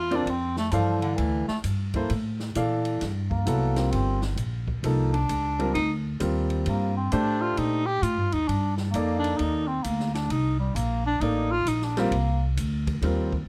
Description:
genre	modal jazz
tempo	132 BPM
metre	4/4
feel	swing 66% on 8ths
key	G dorian, C dorian from 3.0 s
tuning	A4 = 440 Hz
part	bright bass clarinet	second line	0.0-12.4 s	D3 to G4	-30 LUFS	equal	none
part	upright bass	bass	0.0-13.5 s	G1 to Bb2	-29 LUFS	equal	none
part	warm baby grand piano	accompaniment	0.1-13.3 s	E3 to F5	-30 LUFS	equal	none
part	open jazz drum kit	drums	0.1-13.4 s	hi-hat, kick drum, ride cymbal, snare drum	-40 LUFS	equal	none
room	light reverb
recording	close, detailed microphones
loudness	-26 LUFS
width	mono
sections	0.0-3.0 A section; 3.0-13.5 A section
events	bass clarinet solo 0.0-13.5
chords	0.0 Gm9; 3.0 Cm11

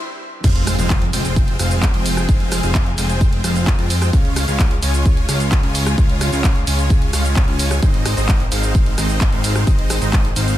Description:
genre	EDM, festival progressive house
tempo	130 BPM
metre	4/4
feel	straight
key	F minor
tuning	A4 = 440 Hz
part	clear baby grand piano	accompaniment	0.0-0.5 s	G2 to G4	-38 LUFS	right 2 dB	sidechain pumping, ping-pong delay
part	rich symphonic string section	sustained chords	0.4-10.6 s	Db3 to Ab4	-28 LUFS	left 2 dB	sidechain pumping
part	supersaw chords	riff	0.4-10.6 s	Ab3 to Ab5	-23 LUFS	right 1 dB	wide subtle chorus, sidechain pumping, ping-pong delay
part	fat analog bass	bass	0.4-10.6 s	F1 to F2	-20 LUFS	equal	sidechain pumping
part	electronic kick drum	drums	0.4-10.2 s	none	-16 LUFS	equal	none
part	pop drum kit	drums	0.4-10.6 s	cabasa, crash cymbal, handclaps, hi-hat, rim click	-24 LUFS	right 1 dB	none
part	impact	sound effects	0.4-2.3 s	none	-25 LUFS	equal	none
room	little or no reverb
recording	high-pass filter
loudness	-14 LUFS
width	side -13 dB against mid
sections	0.4-10.6 A section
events	stop 0.0-0.4; drop 0.4-10.6; impact 0.4-2.3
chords	0.4 Fm; 4.1 Db; 7.8 Ab

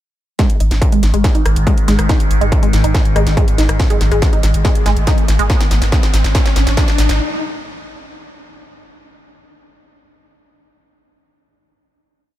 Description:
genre	driving peak-time techno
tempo	141 BPM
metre	4/4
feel	straight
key	unclear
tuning	A4 = 440 Hz
part	resonant blip pluck	riff	0.4-5.4 s	G#3 to D#4	-21 LUFS	equal	phaser, cassette tape, sidechain pumping, tape echo
part	overtone-sweeping drone	drone	1.0-5.5 s	G#2 to D#3	-23 LUFS	left 1 dB	chorus, built-in reverb, sidechain pumping
part	electronic kick drum	drums	0.4-6.9 s	none	-14 LUFS	equal	distortion, overdrive, small room ambience
part	techno drum kit	drums	0.4-7.2 s	hi-hat, rim click, snare drum	-24 LUFS	equal	overdrive, high-pass filter on snare, small room ambience, sidechain pumping on hats, high-pass filter on hats
part	riser	sound effects	3.5-7.2 s	none	-25 LUFS	left 1 dB	none
part	saturated sub bass	bass	0.6-7.2 s	G#1	-15 LUFS	equal	tube saturation, sidechain pumping, low-pass filter
room	digital ambience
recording	none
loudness	-12 LUFS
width	side -13 dB against mid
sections	0.4-7.2 build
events	build-up 0.4-7.2; drum fill 0.4-7.2; filter sweep on synth arpeggio sound 0.4-5.5; riser 3.5-7.2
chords	0.4 G#5

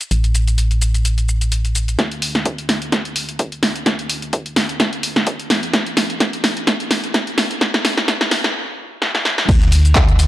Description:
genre	piano house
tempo	128 BPM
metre	4/4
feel	swing 55% on 16ths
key	unclear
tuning	A4 = 445 Hz
part	punchy analog drum machine	drums	0.0-10.3 s	crash cymbal, handclaps, hi-hat, shaker, snare drum	-17 LUFS	equal	none
part	organ-like FM bass	bass	0.1-10.3 s	A1 to E2	-18 LUFS	equal	sidechain pumping, high-pass filter
part	electronic kick drum	drums	2.0-10.1 s	none	-18 LUFS	equal	high-pass filter on kick
part	dusty soul sampler-style drum kit	drums	9.5-10.3 s	hi-hat, snare drum	-30 LUFS	equal	none
room	light reverb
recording	dry, gritty hardware recording, transformer saturation, cassette tape, high-pass filter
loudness	-15 LUFS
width	side -15 dB against mid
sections	0.0-2.0 A section; 2.0-9.5 B section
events	build-up 2.0-9.5; drum fill 2.0-8.5, 9.0-9.5; stop 8.5-9.5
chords	none

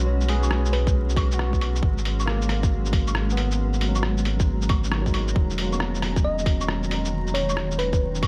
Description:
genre	future garage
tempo	136 BPM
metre	4/4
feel	swing 66% on 16ths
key	G# minor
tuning	A4 = 440 Hz
part	barky tine electric piano	accompaniment	0.0-8.3 s	D#3 to C#5	-33 LUFS	equal	sidechain pumping, analog delay
part	granular cloud pad	sustained chords	0.0-8.3 s	D#3 to A#5	-34 LUFS	equal	built-in reverb, sidechain pumping
part	warm sub bass	bass	0.0-8.3 s	E1 to B1	-27 LUFS	equal	tube saturation
part	lo-fi sampler-style drum kit	drums	0.2-8.3 s	claves, hi-hat, rim click, shaker	-32 LUFS	equal	studio reverb
part	thumb-piano-like synth pluck	melody	0.7-1.4, 6.2-8.2 s	B4 to D#5	-33 LUFS	equal	chorus, vintage 12-bit sampler grit, analog delay
part	electronic kick drum	drums	0.9-8.3 s	none	-25 LUFS	equal	studio reverb
room	light reverb, digital ambience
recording	vinyl crackle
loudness	-23 LUFS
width	mono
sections	0.0-8.3 A section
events	none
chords	0.0 Bsus2; 1.8 G#m7; 5.4 Emaj7

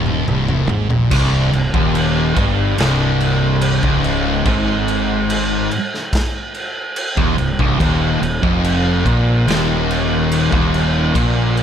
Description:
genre	stoner and doom metal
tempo	72 BPM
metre	4/4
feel	straight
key	C phrygian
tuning	A4 = 444 Hz
part	thick fuzz guitar	riff	0.0-11.6 s	C2 to Bb2	-21 LUFS	left 8 dB	distortion
part	thick fuzz guitar	riff	0.0-11.6 s	C2 to Bb2	-20 LUFS	right 6 dB	distortion
part	fuzz fingered electric bass	bass	0.0-11.6 s	C1 to Bb1	-22 LUFS	equal	overdrive
part	raw garage drum kit	drums	0.1-11.6 s	crash cymbal, kick drum, snare drum, toms	-20 LUFS	equal	none
part	distorted electric guitar	riff	1.1-11.6 s	C2 to Bb2	-20 LUFS	equal	overdrive
room	studio reverb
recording	none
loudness	-14 LUFS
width	side -8 dB against mid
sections	0.0-1.1 A section; 1.1-11.6 B section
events	drum fill 0.0-1.1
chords	0.0 Cm; 7.8 Eb5

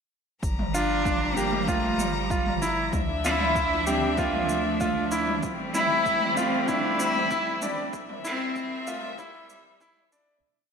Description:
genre	piano and strings electronica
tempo	96 BPM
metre	4/4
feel	straight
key	G dorian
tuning	A4 = 440 Hz
part	clear string quartet	sustained chords	0.4-10.4 s	Bb2 to Bb5	-30 LUFS	equal	sidechain pumping
part	round analog bass	bass	0.4-10.4 s	G1 to D2	-36 LUFS	equal	sidechain pumping
part	electronic kick drum	drums	0.4-9.9 s	none	-32 LUFS	equal	overdrive
part	electronic shaker and toms	drums	0.4-10.2 s	none	-35 LUFS	equal	none
part	clear cello	melody	0.7-10.1 s	G3 to E4	-27 LUFS	left 1 dB	ping-pong delay
part	bright grand piano	riff	0.7-10.3 s	D4 to G4	-29 LUFS	right 1 dB	ping-pong delay
room	wet lush hall reverb, RT60 1.7 s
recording	dreamy mix soaked in reverb, high-pass filter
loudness	-23 LUFS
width	side -6 dB against mid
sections	0.4-10.4 build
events	build-up 0.4-10.4; filter sweep 0.4-10.4; fade-out 7.1-10.4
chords	0.4 Gm7; 2.9 Dmadd9; 5.4 Am7; 7.9 C7

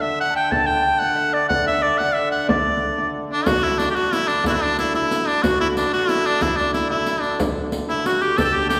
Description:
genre	medieval dance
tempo	122 BPM (dotted quarters)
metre	6/8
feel	straight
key	D major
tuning	A4 = 440 Hz
part	bright shawm	melody	0.0-8.8 s	D4 to A5	-22 LUFS	equal	none
part	Celtic harp	second line	0.0-8.8 s	D4 to A5	-27 LUFS	equal	none
part	dark hurdy-gurdy	drone	0.0-8.8 s	D3	-33 LUFS	equal	none
part	frame drum	percussion	0.0-8.8 s	none	-29 LUFS	equal	none
part	riq	percussion	3.5-8.8 s	none	-32 LUFS	equal	none
room	wet recital hall reverb, RT60 1.7 s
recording	recorded in a church or concert hall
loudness	-20 LUFS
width	mono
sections	0.0-3.5 A section; 3.5-8.8 A section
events	none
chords	none

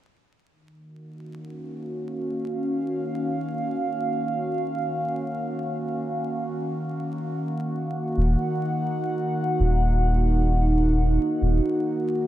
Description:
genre	ambient dub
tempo	free time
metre	none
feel	none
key	Eb minor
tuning	A4 = 440 Hz
part	warbly tape-like pad	sustained chords	1.0-12.3 s	Eb3 to Gb5	-25 LUFS	right 1 dB	chorus, built-in reverb, phaser
part	soft dub sub bass	bass	8.2-11.6 s	Eb1	-20 LUFS	equal	tube saturation
room	moderate huge ambient reverb, RT60 4.0 s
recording	vinyl crackle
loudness	-23 LUFS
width	side -13 dB against mid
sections	0.5-12.3 A section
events	break 11.8-12.3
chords	0.5 Ebm7

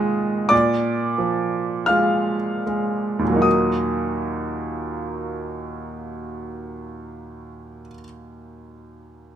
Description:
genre	classical, romantic nocturne for solo piano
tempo	36-49 BPM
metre	4/4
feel	rubato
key	Eb minor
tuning	A4 = 441 Hz
part	clear baby grand piano	solo	0.0-9.4 s	Eb2 to F6	-21 LUFS	right 1 dB	none
room	moderate recital hall reverb, RT60 1.8 s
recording	close, detailed microphones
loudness	-19 LUFS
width	side -10 dB against mid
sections	0.0-3.4 A section; 3.4-9.3 B section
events	slowing down 0.0-3.4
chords	0.0 Bb7sus4; 0.5 Bb7; 3.4 Ebm

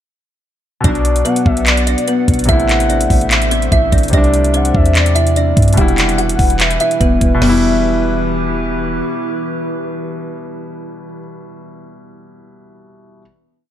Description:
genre	hip hop, trap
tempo	146 BPM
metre	4/4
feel	half-time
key	E minor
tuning	A4 = 440 Hz
part	kalimba	melody	0.8-8.6 s	B3 to G5	-18 LUFS	left 1 dB	low-pass filter
part	gliding portamento lead	second line	0.8-8.6 s	D5 to F#5	-23 LUFS	left 4 dB	chorus, ping-pong delay
part	clear concert grand piano	accompaniment	0.8-13.2 s	B2 to E4	-22 LUFS	equal	low-pass filter
part	warbly tape-like pad	sustained chords	1.4-11.1 s	C3 to F#5	-23 LUFS	equal	chorus, built-in reverb
part	clean 808-style bass	bass	0.8-9.0 s	E1 to G2	-16 LUFS	equal	none
part	trap drum kit	drums	0.8-7.5 s	crash cymbal, handclaps, hi-hat, kick drum, snare drum, toms	-16 LUFS	equal	none
room	light reverb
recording	none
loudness	-11 LUFS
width	side -11 dB against mid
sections	0.8-7.4 hook; 7.4-10.7 final chord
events	none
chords	0.8 Bm; 2.5 Am; 4.1 Csus2; 5.8 Em

